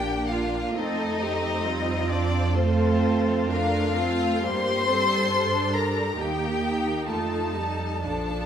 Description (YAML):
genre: classical, slow romantic movement for string orchestra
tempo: 61-70 BPM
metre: 4/4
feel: rubato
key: unclear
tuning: A4 = 440 Hz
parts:
  - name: rich chamber violin section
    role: melody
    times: 0.0-8.5 s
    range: C5 to C6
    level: -28 LUFS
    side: left 4 dB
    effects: none
  - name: warm chamber violin section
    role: second line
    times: 0.0-8.5 s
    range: C4 to C5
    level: -30 LUFS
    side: left 1 dB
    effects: none
  - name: rich symphonic viola section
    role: accompaniment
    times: 0.0-8.5 s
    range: F3 to F4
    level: -28 LUFS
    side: right 2 dB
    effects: none
  - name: rich symphonic cello section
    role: bass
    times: 0.0-8.5 s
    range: D4 to Bb4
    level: -32 LUFS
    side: right 4 dB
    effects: none
  - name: rich symphonic double bass section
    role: bass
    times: 0.0-8.5 s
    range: Bb1 to G2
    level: -29 LUFS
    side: right 3 dB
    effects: none
room: moderate scoring stage reverb, RT60 1.7 s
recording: none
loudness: -22 LUFS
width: side -8 dB against mid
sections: 0.0-8.5 A section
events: none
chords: 0.0 Bb; 0.8 F7; 4.4 Gm; 6.2 Eb; 7.1 F7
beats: | 0.75 1.64 2.54 3.49 | 4.44 5.31 6.17 7.08 | 8.05